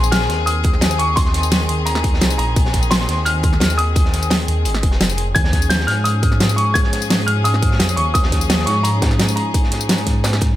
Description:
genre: liquid drum and bass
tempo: 172 BPM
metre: 4/4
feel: straight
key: Bb minor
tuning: A4 = 443 Hz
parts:
  - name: bright grand piano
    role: melody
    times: 0.0-10.6 s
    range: Bb5 to Ab6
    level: -22 LUFS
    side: equal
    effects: digital delay
  - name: rich studio string section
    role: sustained chords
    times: 0.0-10.6 s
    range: Eb3 to Ab4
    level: -24 LUFS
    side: left 3 dB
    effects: sidechain pumping
  - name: dark detuned saw bass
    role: bass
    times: 0.0-10.6 s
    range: F1 to Ab2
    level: -19 LUFS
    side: equal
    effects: none
  - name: pop drum kit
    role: drums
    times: 0.0-10.5 s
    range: hi-hat, snare drum, tambourine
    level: -20 LUFS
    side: equal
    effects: none
  - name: crunchy breakbeat drum kit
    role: drums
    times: 0.1-10.5 s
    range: hi-hat, snare drum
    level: -27 LUFS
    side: equal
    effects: high-pass filter on hats, high-pass filter on snare, high-pass filter on room
  - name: electronic kick drum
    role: drums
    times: 0.6-10.5 s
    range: none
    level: -18 LUFS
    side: equal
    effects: none
room: small room ambience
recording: none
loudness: -14 LUFS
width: side -14 dB against mid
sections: 0.0-10.6 A section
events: none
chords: 0.0 Bb9sus4; 5.4 Eb9sus4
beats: 0.12 0.47 0.82 | 1.17 1.52 1.87 2.22 | 2.57 2.92 3.26 3.61 | 3.96 4.31 4.66 5.01 | 5.36 5.71 6.05 6.40 | 6.75 7.10 7.45 7.80 | 8.15 8.50 8.85 9.19 | 9.54 9.89 10.24

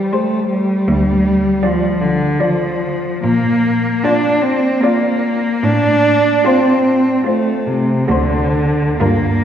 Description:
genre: classical, lyrical piece for cello ensemble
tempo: 75 BPM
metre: 3/4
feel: uneven beats, rubato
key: unclear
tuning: A4 = 441 Hz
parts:
  - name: dark cello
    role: accompaniment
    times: 0.0-9.4 s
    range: C3 to D4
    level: -14 LUFS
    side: equal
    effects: none
  - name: warm cello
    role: melody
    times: 0.1-9.4 s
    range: Bb4 to D5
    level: -23 LUFS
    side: left 3 dB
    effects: none
  - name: rich cello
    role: second line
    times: 0.1-9.4 s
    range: F4 to G4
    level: -26 LUFS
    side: right 2 dB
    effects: none
  - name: clear cello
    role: bass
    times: 0.9-9.4 s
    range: D2 to Bb2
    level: -20 LUFS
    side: right 1 dB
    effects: none
room: wet concert hall reverb, RT60 2.6 s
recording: heard from further back in the room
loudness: -13 LUFS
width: side -9 dB against mid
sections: 0.0-9.4 A section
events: none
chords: 0.0 C5; 0.9 Dm; 3.3 Bb; 5.6 F/A; 8.1 D7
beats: 0.13 | 0.88 1.63 2.40 | 3.25 4.05 4.83 | 5.63 6.45 7.25 | 8.08 8.99

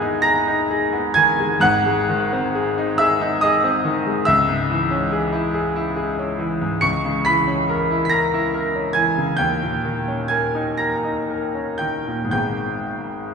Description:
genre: classical, romantic nocturne for solo piano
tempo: 36-48 BPM (dotted quarters)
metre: 12/8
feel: rubato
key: G# minor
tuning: A4 = 440 Hz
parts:
  - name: bright grand piano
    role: solo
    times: 0.0-13.3 s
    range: G#1 to C#7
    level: -18 LUFS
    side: equal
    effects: none
room: wet church reverb, RT60 3.9 s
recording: recorded in a church or concert hall, nothing above 10.9 kHz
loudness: -18 LUFS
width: side -5 dB against mid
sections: 0.0-13.3 A section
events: none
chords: 0.0 G#m; 1.6 G#7; 4.2 C#m; 6.8 A#dim/C#; 9.4 D#7; 12.3 G#m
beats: 0.22 | 1.60 2.96 4.24 5.52 | 6.81 8.10 9.39 10.79 | 12.35

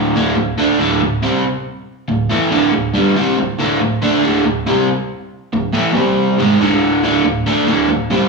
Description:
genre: rock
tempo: 139 BPM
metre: 4/4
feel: straight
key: unclear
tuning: A4 = 441 Hz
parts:
  - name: crunchy overdriven guitar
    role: solo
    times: 0.0-8.3 s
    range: D2 to D4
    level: -13 LUFS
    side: right 1 dB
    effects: none
room: wet large studio reverb, RT60 1.3 s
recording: band playing live in one room, small room ambience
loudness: -13 LUFS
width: side -3 dB against mid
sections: 0.0-8.3 A section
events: none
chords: 0.0 D5; 6.0 C5; 6.4 D5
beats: | 0.15 0.58 1.01 1.45 | 1.88 2.31 2.74 3.17 | 3.60 4.03 4.46 4.89 | 5.32 5.75 6.18 6.61 | 7.04 7.47 7.90

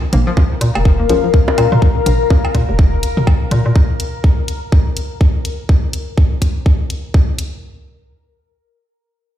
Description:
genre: minimal techno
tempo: 124 BPM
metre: 4/4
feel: swing 59% on 16ths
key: unclear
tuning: A4 = 441 Hz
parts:
  - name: bubbling stepped-filter texture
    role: texture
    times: 0.2-5.7 s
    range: Bb4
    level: -30 LUFS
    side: left 4 dB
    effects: chorus, built-in reverb, sidechain pumping
  - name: warbly tape-like pad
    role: texture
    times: 0.6-3.8 s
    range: Bb4 to Bb5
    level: -20 LUFS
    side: left 8 dB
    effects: chorus, built-in reverb, sidechain pumping
  - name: string-like resonator pluck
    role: riff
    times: 0.1-1.3 s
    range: F3 to Bb3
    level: -24 LUFS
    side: left 2 dB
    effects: chorus, cassette tape, sidechain pumping, ping-pong delay
  - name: hollow knocking FM bass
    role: bass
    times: 0.1-3.7 s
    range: F1 to Bb2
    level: -16 LUFS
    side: equal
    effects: sidechain pumping
  - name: electronic hi-hat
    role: drums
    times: 0.1-7.5 s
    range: none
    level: -26 LUFS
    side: left 1 dB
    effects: none
  - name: electronic toms, bongos and cowbell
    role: percussion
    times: 0.1-3.6 s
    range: none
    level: -21 LUFS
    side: right 1 dB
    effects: dub echo
  - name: electronic kick drum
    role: drums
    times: 0.4-7.3 s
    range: none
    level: -11 LUFS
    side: equal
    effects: none
  - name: filtered dub chord stab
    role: stabs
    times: 1.1-1.7 s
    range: Ab3 to Bb4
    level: -27 LUFS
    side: right 1 dB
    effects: chorus, cassette tape, dub echo
room: light reverb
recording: played on a big sound system in a bare room, large studio reverb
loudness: -12 LUFS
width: side -11 dB against mid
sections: 0.0-7.6 A section; 7.6-9.4 B section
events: none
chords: 0.0 Bb5; 7.6 N.C.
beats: 0.37 0.85 1.34 | 1.82 2.30 2.79 3.27 | 3.76 4.24 4.72 5.21 | 5.69 6.17 6.66 7.14

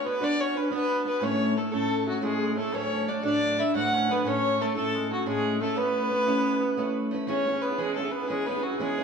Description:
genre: celtic folk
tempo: 119 BPM (dotted quarters)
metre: 9/8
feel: straight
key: A major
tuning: A4 = 440 Hz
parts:
  - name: dark fiddle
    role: melody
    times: 0.0-9.0 s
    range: F#4 to F#5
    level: -28 LUFS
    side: left 1 dB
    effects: none
  - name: mellow hollow baroque flute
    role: second line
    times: 0.0-9.0 s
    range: F#4 to F#5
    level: -34 LUFS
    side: equal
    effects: none
  - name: warm cor anglais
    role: second line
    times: 0.0-9.0 s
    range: F#3 to F#4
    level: -35 LUFS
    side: right 3 dB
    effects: none
  - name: picked steel-string acoustic guitar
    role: accompaniment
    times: 0.0-9.0 s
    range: D2 to B4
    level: -28 LUFS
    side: right 1 dB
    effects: none
room: wet large studio reverb, RT60 1.2 s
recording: band playing live in one room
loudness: -24 LUFS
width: side -6 dB against mid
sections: 0.0-7.3 A section; 7.3-9.0 B section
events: none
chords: 0.0 Bm; 1.2 A; 2.7 D; 4.2 A; 5.8 Aadd9; 7.3 E6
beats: 0.20 0.71 | 1.22 1.72 2.23 | 2.73 3.24 3.74 | 4.25 4.75 5.26 | 5.76 6.27 6.78 | 7.28 7.79 8.29 | 8.80

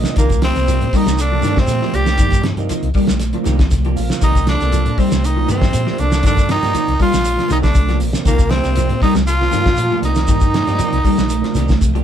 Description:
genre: afrobeat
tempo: 119 BPM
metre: 4/4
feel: straight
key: C minor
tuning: A4 = 440 Hz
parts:
  - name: combo organ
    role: accompaniment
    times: 0.0-11.7 s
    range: C3 to Eb5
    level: -28 LUFS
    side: right 6 dB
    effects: none
  - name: hollow-body short-scale fingered electric bass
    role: bass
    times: 0.0-12.0 s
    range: Bb1 to Bb2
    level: -19 LUFS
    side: left 1 dB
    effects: none
  - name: cloth-damped thuddy drum kit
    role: drums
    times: 0.0-12.0 s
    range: hi-hat, kick drum, snare drum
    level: -18 LUFS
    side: equal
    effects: none
  - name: shekere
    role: percussion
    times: 0.1-11.9 s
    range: none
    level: -26 LUFS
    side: right 2 dB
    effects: none
  - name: raspy tenor saxophone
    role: melody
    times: 0.2-11.8 s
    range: Bb3 to G4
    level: -20 LUFS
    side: right 1 dB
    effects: none
  - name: clear trombone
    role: second line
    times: 0.2-11.8 s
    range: Bb3 to G4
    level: -27 LUFS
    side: right 1 dB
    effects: none
  - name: warm baritone saxophone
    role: second line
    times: 0.2-11.8 s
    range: Bb2 to G3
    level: -29 LUFS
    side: left 1 dB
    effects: none
  - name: electric guitar at the edge of break-up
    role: arpeggios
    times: 0.2-12.0 s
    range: Eb3 to G3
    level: -22 LUFS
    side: left 3 dB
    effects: slapback echo
  - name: electric guitar at the edge of break-up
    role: stabs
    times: 0.2-12.0 s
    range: Eb3 to G4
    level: -29 LUFS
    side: right 8 dB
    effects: none
  - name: congas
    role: percussion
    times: 0.2-12.0 s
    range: none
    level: -27 LUFS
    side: right 9 dB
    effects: none
room: light reverb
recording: band playing live in one room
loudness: -13 LUFS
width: side -9 dB against mid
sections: 0.0-12.0 A section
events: transistor combo organ fill 0.0; drum fill 11.3-12.0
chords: 0.0 Cm9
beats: | 0.18 0.68 1.19 1.70 | 2.20 2.71 3.21 3.72 | 4.22 4.73 5.24 5.74 | 6.25 6.75 7.26 7.76 | 8.27 8.77 9.28 9.79 | 10.29 10.80 11.31 11.81

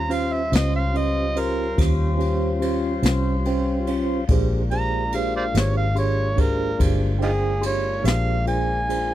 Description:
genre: slow blues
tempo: 48 BPM (dotted quarters)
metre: 12/8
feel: straight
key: unclear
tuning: A4 = 435 Hz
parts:
  - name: overdriven harmonica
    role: second line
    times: 0.0-9.1 s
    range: Eb4 to Bb5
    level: -25 LUFS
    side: right 2 dB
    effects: none
  - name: tonewheel organ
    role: sustained chords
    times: 0.0-9.1 s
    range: G3 to C5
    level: -29 LUFS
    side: left 4 dB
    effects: slow rotary speaker
  - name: vintage muted fingered electric bass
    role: bass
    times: 0.0-9.1 s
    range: G1 to Eb2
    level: -24 LUFS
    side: equal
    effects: none
  - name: mellow tine electric piano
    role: accompaniment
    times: 0.1-9.1 s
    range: Db4 to C6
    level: -27 LUFS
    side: right 3 dB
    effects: medium stereo tremolo
  - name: jazz brush drum kit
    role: drums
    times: 0.1-9.1 s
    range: kick drum, ride cymbal, snare drum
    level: -25 LUFS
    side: left 1 dB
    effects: none
room: little or no reverb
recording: dry, close 1970s-style studio recording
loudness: -19 LUFS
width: side -13 dB against mid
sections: 0.0-9.1 A section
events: harmonica solo 0.0-9.1; tine electric piano fill 3.0-4.3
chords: 0.0 Eb13; 4.3 Bb13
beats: 0.52 1.78 3.04 | 4.29 5.55 6.80 8.06

